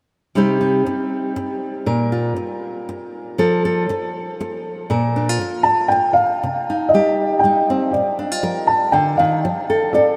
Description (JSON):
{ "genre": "acoustic folk duo or small band", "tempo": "119 BPM", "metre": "3/4", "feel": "straight", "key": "C dorian", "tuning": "A4 = 445 Hz", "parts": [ { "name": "nylon-string guitar", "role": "accompaniment", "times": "0.4-10.2 s", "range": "Bb2 to Bb4", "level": "-22 LUFS", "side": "equal", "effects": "none" }, { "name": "felt-muted upright piano", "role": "melody", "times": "5.6-10.2 s", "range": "D5 to A5", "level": "-18 LUFS", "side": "equal", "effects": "none" } ], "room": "wet huge ambient reverb, RT60 8.2 s", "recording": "in a vast, echoing space", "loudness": "-19 LUFS", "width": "mono", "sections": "0.3-6.4 A section; 6.4-10.2 B section", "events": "none", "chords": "0.3 Cm; 1.9 Bb5; 3.4 F; 4.9 Bb5; 6.4 Cm; 7.9 Bb; 9.4 F6" }